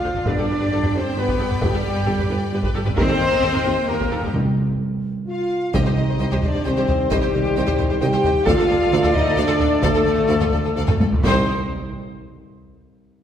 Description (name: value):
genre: cinematic, epic orchestral film score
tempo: 132 BPM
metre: 3/4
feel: straight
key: C dorian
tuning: A4 = 445 Hz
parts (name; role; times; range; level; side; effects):
- warm symphonic violin section; melody; 0.0-11.5 s; G4 to G5; -32 LUFS; left 5 dB; none
- clear symphonic violin section; second line; 0.0-11.5 s; F4 to G5; -32 LUFS; left 3 dB; none
- rich studio viola section; accompaniment; 0.0-11.5 s; Eb4 to D5; -28 LUFS; equal; none
- mellow French horn section; sustained chords; 0.0-11.5 s; G3 to G4; -23 LUFS; left 1 dB; none
- dark trumpet section; stabs; 0.0-11.5 s; G4 to F5; -29 LUFS; left 1 dB; none
- rich symphonic cello section; bass; 0.0-11.5 s; C2 to F4; -30 LUFS; right 2 dB; none
- warm tuba; bass; 0.0-11.4 s; G1 to Eb2; -28 LUFS; right 1 dB; none
- clear symphonic double bass section; bass; 0.1-11.5 s; C2 to G2; -28 LUFS; right 2 dB; none
- taiko ensemble; drums; 0.2-12.2 s; none; -24 LUFS; equal; none
- dark trombone section; sustained chords; 0.3-3.1, 5.7-11.4 s; D3 to B3; -30 LUFS; right 1 dB; none
- timpani; percussion; 0.3-0.9, 4.3-6.4, 11.3-11.5 s; G2 to C3; -25 LUFS; right 1 dB; none
- hollow concert flute; second line; 5.3-11.5 s; G4 to C6; -27 LUFS; left 3 dB; none
room: wet recital hall reverb, RT60 1.7 s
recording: recorded in a church or concert hall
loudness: -17 LUFS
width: side -9 dB against mid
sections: 0.0-5.7 A section; 5.7-11.3 B section; 11.3-12.7 C section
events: break 4.4-5.7; drum fill 5.4-5.7, 10.9-11.3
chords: 0.3 G; 3.0 Eb; 4.4 N.C.; 5.7 Cm; 8.5 Dm; 11.3 Cm